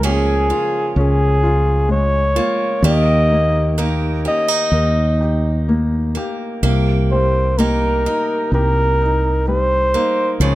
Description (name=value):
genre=acoustic folk-pop ballad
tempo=64 BPM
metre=4/4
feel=straight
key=unclear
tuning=A4 = 440 Hz
part: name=felt-muted upright piano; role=accompaniment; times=0.0-10.6 s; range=C3 to Bb4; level=-23 LUFS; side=left 2 dB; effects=none
part: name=picked steel-string acoustic guitar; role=arpeggios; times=0.0-10.6 s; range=F3 to Ab4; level=-24 LUFS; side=right 5 dB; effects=none
part: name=mellow fretless electric bass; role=bass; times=0.0-10.6 s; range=C2 to Eb2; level=-17 LUFS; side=equal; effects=none
part: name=mellow flugelhorn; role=melody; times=0.1-10.6 s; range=Ab4 to Eb5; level=-18 LUFS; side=equal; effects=plate reverb
room=light reverb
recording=close, detailed microphones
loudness=-14 LUFS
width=side -16 dB against mid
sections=0.0-10.6 A section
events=none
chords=0.0 Bbm7/Db; 2.8 Eb; 6.6 Cm7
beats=0.02 0.96 1.89 | 2.83 3.78 4.72 5.67 | 6.63 7.58 8.52 9.47 | 10.41